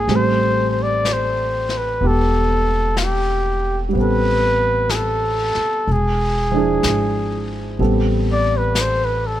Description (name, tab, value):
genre	jazz ballad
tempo	62 BPM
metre	4/4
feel	swing 68% on 8ths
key	A minor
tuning	A4 = 438 Hz
part	breathy trumpet	melody	0.0-9.4 s	F4 to D5	-20 LUFS	equal	none
part	warm concert grand piano	accompaniment	0.0-9.4 s	F3 to A4	-22 LUFS	right 2 dB	none
part	upright bass	bass	0.0-9.4 s	E1 to A1	-21 LUFS	equal	none
part	vintage brush drum kit	drums	0.1-9.4 s	brushed snare drum, hi-hat, snare drum	-29 LUFS	left 4 dB	none
room	light reverb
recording	none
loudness	-16 LUFS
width	side -12 dB against mid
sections	0.0-7.8 A section; 7.8-9.4 B section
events	trumpet solo 7.8-9.4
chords	0.1 Am9; 5.9 E7b9; 7.8 Am9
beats	| 0.09 1.05 2.02 2.98 | 3.94 4.91 5.87 6.83 | 7.79 8.75